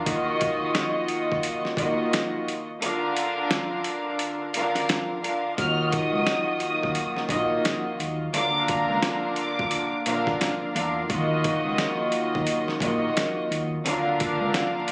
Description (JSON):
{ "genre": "hip hop, boom-bap hip-hop", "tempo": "87 BPM", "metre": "4/4", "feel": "swing 60% on 16ths", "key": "Eb harmonic minor", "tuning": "A4 = 440 Hz", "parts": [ { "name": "rich studio string section", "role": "accompaniment", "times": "0.0-14.9 s", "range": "D3 to F5", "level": "-28 LUFS", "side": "equal", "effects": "high-pass filter, low-pass filter" }, { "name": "boom bap sampler-style drum kit", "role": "drums", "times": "0.1-14.9 s", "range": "hi-hat, kick drum, snare drum", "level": "-31 LUFS", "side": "equal", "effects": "none" }, { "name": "rich studio violin section", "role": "melody", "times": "5.6-9.9 s", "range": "Bb5 to F6", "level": "-31 LUFS", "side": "equal", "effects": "high-pass filter, low-pass filter, slapback echo" }, { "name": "warm analog pad", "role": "sustained chords", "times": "5.6-14.9 s", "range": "D3 to F5", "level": "-39 LUFS", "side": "equal", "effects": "none" }, { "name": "deep dub fingered electric bass", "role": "bass", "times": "5.6-14.5 s", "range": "Bb1 to Fb2", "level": "-34 LUFS", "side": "equal", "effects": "none" } ], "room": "moderate small room reverb, RT60 0.6 s", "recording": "recorded on a phone in the room, club reverb, vinyl crackle", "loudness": "-26 LUFS", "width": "mono", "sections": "0.0-14.9 A section", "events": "break 0.1-5.6; kick muted 2.8-5.6", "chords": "0.1 Ebmadd9; 2.8 Bb/D; 5.6 Ebmadd9; 8.3 Bb; 11.1 Ebmadd9; 13.9 Bb" }